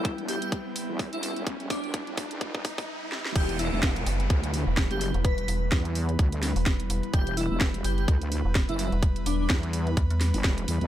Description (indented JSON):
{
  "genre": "bass house",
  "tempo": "127 BPM",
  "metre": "4/4",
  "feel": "swing 57% on 16ths",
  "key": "E minor",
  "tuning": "A4 = 440 Hz",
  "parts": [
    { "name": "deep dark ambient pad", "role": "sustained chords", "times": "0.0-10.9 s", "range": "G3 to E4", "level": "-36 LUFS", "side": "left 1 dB", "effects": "chorus, built-in reverb, sidechain pumping" },
    { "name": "wobble bass", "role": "bass", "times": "0.0-10.9 s", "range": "E1 to E2", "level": "-30 LUFS", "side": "equal", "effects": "chorus, overdrive, sidechain pumping, high-pass filter" },
    { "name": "electronic kick drum", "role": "drums", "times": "0.0-10.6 s", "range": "none", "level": "-25 LUFS", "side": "equal", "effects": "overdrive" },
    { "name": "garage drum kit", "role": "drums", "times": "0.0-10.9 s", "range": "hi-hat, snare drum", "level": "-32 LUFS", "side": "right 1 dB", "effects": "overdrive" },
    { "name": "riser and downlifter", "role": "sound effects", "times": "0.0-7.1 s", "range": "none", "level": "-36 LUFS", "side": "right 1 dB", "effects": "none" },
    { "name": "airy breathy pad", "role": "texture", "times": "0.0-10.9 s", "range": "E4 to G5", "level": "-41 LUFS", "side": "equal", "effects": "chorus, sidechain pumping" },
    { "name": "airy dreamy lead", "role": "melody", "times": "0.3-9.5 s", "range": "D4 to B4", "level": "-35 LUFS", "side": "left 2 dB", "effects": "chorus, phaser, tape echo" },
    { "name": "metallic FM bass", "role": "bass", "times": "4.1-10.3 s", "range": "E1 to E2", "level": "-27 LUFS", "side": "equal", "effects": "tube saturation, sidechain pumping" }
  ],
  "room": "little or no reverb",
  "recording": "high-pass filter",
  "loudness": "-24 LUFS",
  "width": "side -12 dB against mid",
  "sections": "0.0-3.4 A section; 3.4-10.9 B section",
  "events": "build-up 0.0-3.4; drum fill 0.0-2.9, 3.1; riser 0.0-3.4; filter sweep 0.0-3.4; drop 3.4-10.9",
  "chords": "0.0 Em"
}